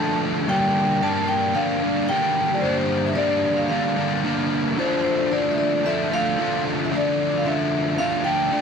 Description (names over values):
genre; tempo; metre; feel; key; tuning
rock; 112 BPM; 4/4; straight; D minor; A4 = 439 Hz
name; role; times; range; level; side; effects
vibraphone with hard mallets; melody; 0.0-8.6 s; C5 to A5; -23 LUFS; equal; tape echo
overdriven electric guitar; riff; 0.0-8.6 s; G2 to D4; -22 LUFS; equal; lush chorus
room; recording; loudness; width
light reverb; none; -19 LUFS; side -6 dB against mid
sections
0.0-8.6 A section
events
none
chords
0.5 Gm7; 4.8 Dm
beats
| 0.48 1.02 1.55 2.09 | 2.62 3.16 3.70 4.23 | 4.77 5.30 5.84 6.38 | 6.91 7.45 7.98 8.52